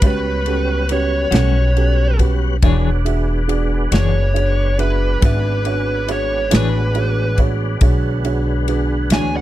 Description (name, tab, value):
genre	slow blues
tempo	46 BPM (dotted quarters)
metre	12/8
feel	straight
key	E mixolydian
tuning	A4 = 439 Hz
part	smooth overdriven lead guitar	melody	0.0-9.4 s	B4 to G#5	-22 LUFS	equal	none
part	dark upright piano	accompaniment	0.0-9.4 s	C#4 to E5	-24 LUFS	right 8 dB	none
part	tonewheel organ	sustained chords	0.0-9.4 s	D3 to F#5	-26 LUFS	equal	chorus vibrato, slow rotary speaker
part	upright bass	bass	0.0-9.4 s	E1 to D2	-18 LUFS	equal	none
part	natural country drum kit	drums	0.0-9.3 s	kick drum, ride cymbal, snare drum	-16 LUFS	equal	none
part	clean electric guitar	accompaniment	1.3-9.4 s	A2 to C#5	-22 LUFS	left 9 dB	tremolo
room	little or no reverb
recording	dry, close 1970s-style studio recording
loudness	-15 LUFS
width	side -14 dB against mid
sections	0.0-9.4 A section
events	lead electric guitar solo 0.0-9.4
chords	0.0 A13; 2.6 E13